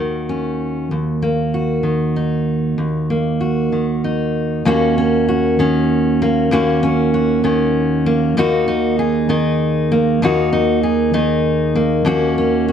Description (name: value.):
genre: folk.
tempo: 65 BPM (dotted quarters).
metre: 6/8.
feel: straight.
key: Eb minor.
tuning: A4 = 437 Hz.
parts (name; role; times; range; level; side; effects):
fingerpicked steel-string acoustic guitar; solo; 0.0-12.7 s; Eb2 to Ab4; -14 LUFS; equal; none.
room: light reverb.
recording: none.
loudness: -14 LUFS.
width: side -8 dB against mid.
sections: 0.0-4.7 A section; 4.7-12.7 B section.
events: none.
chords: 0.0 Ebm7; 0.9 Ebm; 4.7 Ebm7; 8.4 Ebmadd11; 12.1 Ebm7.